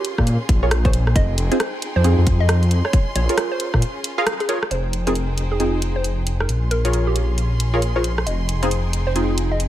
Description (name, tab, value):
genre	UK garage, two-step garage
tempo	135 BPM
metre	4/4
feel	swing 62% on 16ths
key	F minor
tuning	A4 = 440 Hz
part	hollow square pluck	melody	0.0-9.7 s	G4 to Eb5	-28 LUFS	right 1 dB	chorus, vintage 12-bit sampler grit, ping-pong delay
part	rich studio violin section	sustained chords	0.0-9.7 s	Db4 to C6	-32 LUFS	right 1 dB	sidechain pumping
part	punchy chord stab	stabs	0.0-9.7 s	C4 to F5	-24 LUFS	right 1 dB	chorus, ping-pong delay
part	garage drum kit	drums	0.0-9.7 s	hi-hat, rim click	-24 LUFS	equal	studio reverb
part	dark detuned saw bass	bass	0.2-9.7 s	F1 to Bb2	-19 LUFS	equal	sidechain pumping
part	electronic kick drum	drums	0.2-3.8 s	none	-18 LUFS	equal	studio reverb
room	little or no reverb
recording	none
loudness	-17 LUFS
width	side -13 dB against mid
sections	0.0-4.7 A section; 4.7-9.7 B section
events	filter sweep on synth stab 0.0-4.7; break 3.8-4.7; band accent 4.3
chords	0.0 Bbm7; 1.2 Fm7; 2.9 Bbm7; 4.7 Fm7; 6.5 Bbm7; 8.3 Fm7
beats	0.27 0.71 | 1.16 1.60 2.05 2.49 | 2.94 3.38 3.82 4.27 | 4.71 5.16 5.60 6.05 | 6.49 6.93 7.38 7.82 | 8.27 8.71 9.16 9.60